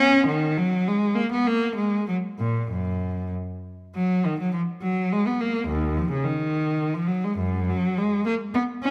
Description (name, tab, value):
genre	classical, baroque-style suite movement for unaccompanied cello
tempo	93-109 BPM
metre	3/4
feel	rubato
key	F# major, Eb minor from 3.9 s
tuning	A4 = 437 Hz
part	warm cello	solo	0.0-8.9 s	Eb2 to Db4	-24 LUFS	equal	none
room	moderate recital hall reverb, RT60 1.7 s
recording	none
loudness	-25 LUFS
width	mono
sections	0.0-3.9 A section; 3.9-8.9 A section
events	none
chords	none